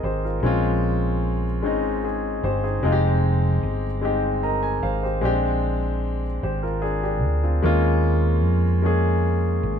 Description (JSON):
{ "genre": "slow six-eight R&B", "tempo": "50 BPM (dotted quarters)", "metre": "6/8", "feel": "straight", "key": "unclear", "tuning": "A4 = 440 Hz", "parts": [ { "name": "warm concert grand piano", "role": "accompaniment", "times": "0.0-9.8 s", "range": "Ab3 to Bb5", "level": "-23 LUFS", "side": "left 2 dB", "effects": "none" }, { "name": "fingered electric bass", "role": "bass", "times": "0.0-9.8 s", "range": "F1 to F2", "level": "-22 LUFS", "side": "right 1 dB", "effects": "none" } ], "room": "light reverb", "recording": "band playing live in one room", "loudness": "-20 LUFS", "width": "side -8 dB against mid", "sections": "0.4-9.8 A section", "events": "grand piano fill 4.0-5.2", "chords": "0.4 Bbm9; 2.8 Fm7; 5.2 Bb13; 7.6 Eb9sus4", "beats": "| 0.42 1.62 | 2.82 4.02 | 5.22 6.42 | 7.62 8.82" }